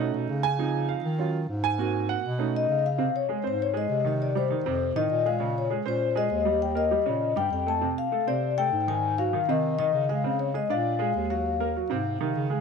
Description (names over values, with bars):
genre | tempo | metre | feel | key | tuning
jazz | 199 BPM | 4/4 | straight | Db major | A4 = 440 Hz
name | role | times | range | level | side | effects
clear concert grand piano | accompaniment | 0.0-12.6 s | C3 to Ab5 | -29 LUFS | right 10 dB | none
mellow bass clarinet | bass | 0.0-12.6 s | Eb2 to Eb3 | -30 LUFS | equal | none
vibraphone with soft mallets | melody | 2.6-12.3 s | C5 to A5 | -26 LUFS | left 10 dB | tape echo
room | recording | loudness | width
moderate echo chamber reverb, RT60 1.4 s, small room ambience | 1960s-style stereo with parts hard left and right | -24 LUFS | side -5 dB against mid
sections
0.0-3.0 A section; 3.0-12.6 B section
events
grand piano solo 0.0-3.0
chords
0.0 Cb7; 0.6 Dbmaj7; 1.2 Ebm7; 1.8 Ab7; 2.4 Cb7; 3.0 Db5; 4.2 Cm; 4.8 F7; 5.4 Bbm11; 6.6 Eb9; 7.8 F6; 9.0 Ab7; 10.2 Db5; 10.8 Bb7; 11.4 Ebm; 12.1 Ab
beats
0.29 | 0.59 0.89 1.19 1.49 | 1.79 2.09 2.39 2.69 | 2.99 3.29 3.59 3.89 | 4.20 4.50 4.80 5.10 | 5.40 5.70 6.00 6.30 | 6.61 6.91 7.21 7.51 | 7.82 8.12 8.42 8.72 | 9.03 9.33 9.63 9.93 | 10.23 10.54 10.84 11.14 | 11.45 11.75 12.05 12.36